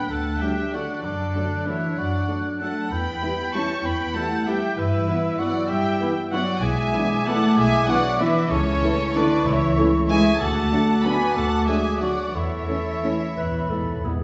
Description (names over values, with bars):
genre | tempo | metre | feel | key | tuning
classical | 168-209 BPM | 3/4 | rubato | A major from 6.6 s | A4 = 440 Hz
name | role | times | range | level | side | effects
dark chamber violin section | melody | 0.0-14.1 s | C#5 to C#6 | -32 LUFS | equal | none
dark cor anglais | second line | 0.0-14.1 s | C#4 to C#5 | -33 LUFS | equal | none
mellow hollow concert flute | second line | 0.0-14.2 s | B5 to G6 | -33 LUFS | equal | none
rich studio violin section | second line | 0.0-14.0 s | A4 to A5 | -33 LUFS | equal | none
warm clarinet | second line | 0.0-14.2 s | D4 to B4 | -32 LUFS | equal | none
rich studio cello section | bass | 0.0-14.0 s | C#3 to C#4 | -29 LUFS | equal | none
dark studio double bass section | bass | 0.1-13.6 s | B1 to G2 | -30 LUFS | equal | none
dark chamber viola section | accompaniment | 0.4-14.1 s | F#3 to E4 | -35 LUFS | equal | none
dark trombone section | sustained chords | 0.4-14.2 s | D3 to B3 | -36 LUFS | equal | none
mellow French horn section | sustained chords | 0.4-14.2 s | A3 to F#4 | -34 LUFS | equal | none
timpani | percussion | 13.4-14.2 s | E2 | -34 LUFS | equal | none
room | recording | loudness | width
wet recital hall reverb, RT60 1.4 s | recorded in a church or concert hall, nothing above 7.9 kHz | -22 LUFS | mono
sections
0.0-14.2 A section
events
timpani fill 13.4-14.2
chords
0.0 D; 1.0 D/F#; 2.9 Em; 4.8 Em/G; 6.6 E7/B; 8.5 A/C#; 10.4 D; 12.3 A/E; 13.4 E